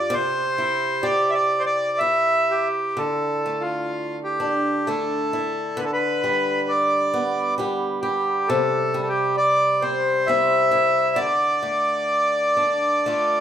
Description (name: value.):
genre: celtic folk.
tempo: 60-68 BPM.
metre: 3/4.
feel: rubato.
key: D dorian.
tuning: A4 = 441 Hz.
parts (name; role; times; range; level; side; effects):
accordion; melody; 0.0-13.4 s; F4 to E5; -20 LUFS; right 1 dB; none.
picked swing-style acoustic guitar; accompaniment; 0.0-13.4 s; G2 to G4; -26 LUFS; left 1 dB; none.
room: moderate large studio reverb, RT60 1.2 s.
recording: band playing live in one room.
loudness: -19 LUFS.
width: side -9 dB against mid.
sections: 0.0-3.0 A section; 3.0-13.4 B section.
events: none.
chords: 0.1 C; 3.0 Dsus2; 5.8 G/D; 8.5 C; 11.2 Dm.